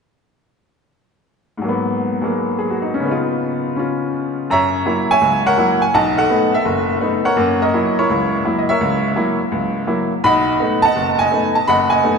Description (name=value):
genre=jazz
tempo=167 BPM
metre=4/4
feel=swing 64% on 8ths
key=F# mixolydian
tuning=A4 = 442 Hz
part: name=bright upright piano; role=solo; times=1.6-12.2 s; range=F#1 to B5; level=-15 LUFS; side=equal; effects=none
room=wet church reverb, RT60 4.0 s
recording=recorded in a church or concert hall, nothing above 10.6 kHz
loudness=-15 LUFS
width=side -5 dB against mid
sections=1.6-4.5 A section; 4.5-12.2 B section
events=none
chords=1.6 G#m9; 3.1 C#9; 4.5 F#7; 5.9 B7; 7.4 F#7; 10.2 B7